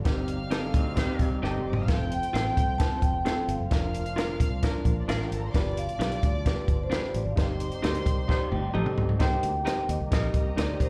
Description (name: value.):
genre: uptempo 1960s-style soul.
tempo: 131 BPM.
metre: 4/4.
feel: straight.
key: unclear.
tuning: A4 = 435 Hz.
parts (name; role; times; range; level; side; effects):
overdriven reed electric piano; accompaniment; 0.0-10.9 s; C4 to Eb5; -37 LUFS; equal; fast tremolo, plate reverb, slapback echo.
tonewheel organ; sustained chords; 0.0-10.9 s; B2 to G4; -42 LUFS; equal; overdrive, stopped rotary speaker.
fingered electric bass; bass; 0.0-10.9 s; F1 to Eb2; -33 LUFS; equal; none.
warm studio string section; second line; 0.1-10.9 s; D4 to G6; -42 LUFS; equal; slapback echo.
compact cocktail drum kit; drums; 0.1-10.9 s; hi-hat, kick drum, snare drum, toms; -30 LUFS; equal; none.
semi-hollow electric guitar; stabs; 0.5-10.7 s; D4 to F5; -39 LUFS; equal; slapback echo, plate reverb.
electric guitar through a small old amp; riff; 0.7-1.9, 8.3-9.2 s; C4 to G4; -40 LUFS; equal; slapback echo.
clear saxophone section; second line; 1.0-1.3, 8.3-10.4 s; G3 to C5; -40 LUFS; equal; slapback echo.
vibraphone with soft mallets; melody; 1.9-10.9 s; B4 to A5; -35 LUFS; equal; slapback echo.
room: light reverb.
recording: live gig heard through the venue's PA, club reverb.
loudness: -27 LUFS.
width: mono.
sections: 0.0-9.2 A section; 9.2-10.9 B section.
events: band accent 0.1-1.9, 7.4-9.2; drum fill 1.4-1.9, 8.3-9.2.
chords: 0.1 Cm/G; 1.9 F; 3.7 Bb/F; 5.5 G7; 7.4 Cm/G; 9.2 Cm7.